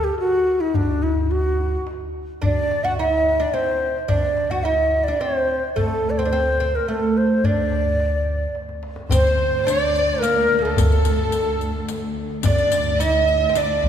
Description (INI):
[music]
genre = Persian modal ensemble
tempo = 108 BPM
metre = 3/4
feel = straight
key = D dastgah homayun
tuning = A4 = 441 Hz
[part]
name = breathy reedy ney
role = melody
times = 0.0-13.9 s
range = D4 to F#5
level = -20 LUFS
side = equal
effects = none
[part]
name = upright bass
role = bass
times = 0.0-13.9 s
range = D2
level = -25 LUFS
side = equal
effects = none
[part]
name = tombak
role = percussion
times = 0.2-13.9 s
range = none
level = -27 LUFS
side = left 2 dB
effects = none
[part]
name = oud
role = second line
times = 2.4-13.9 s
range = A3 to F#4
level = -26 LUFS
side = right 2 dB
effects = none
[part]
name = warm studio violin section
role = second line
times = 9.1-13.9 s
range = A4 to Eb5+45c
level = -27 LUFS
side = left 3 dB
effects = none
[part]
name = clear studio cello section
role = drone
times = 9.1-13.9 s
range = D2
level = -30 LUFS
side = left 2 dB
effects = none
[part]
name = riq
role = percussion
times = 9.1-13.7 s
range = none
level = -33 LUFS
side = left 5 dB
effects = none
[sound]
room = wet church reverb, RT60 2.6 s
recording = recorded in a church or concert hall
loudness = -18 LUFS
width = side -9 dB against mid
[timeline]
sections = 0.0-9.1 A section; 9.1-13.9 B section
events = drum fill 8.6-9.1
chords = none